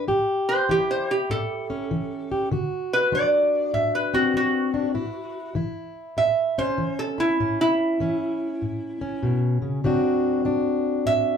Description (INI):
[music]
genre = acoustic country blues, solo or duo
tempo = 98 BPM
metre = 4/4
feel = swing 65% on 8ths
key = A mixolydian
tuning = A4 = 440 Hz
[part]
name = fingerpicked plugged-in steel-string acoustic guitar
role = accompaniment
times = 0.0-11.4 s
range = A2 to G4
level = -24 LUFS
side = left 2 dB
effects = none
[part]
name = lap resonator guitar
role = melody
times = 0.5-11.4 s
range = E4 to E5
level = -22 LUFS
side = right 2 dB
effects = none
[sound]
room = wet small room reverb, RT60 0.5 s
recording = heard from further back in the room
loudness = -21 LUFS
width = side -7 dB against mid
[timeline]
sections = 0.1-11.4 A section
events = resonator guitar played with a steel bar solo 0.1-11.4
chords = 0.1 A7; 2.5 D7; 5.0 A; 9.8 D7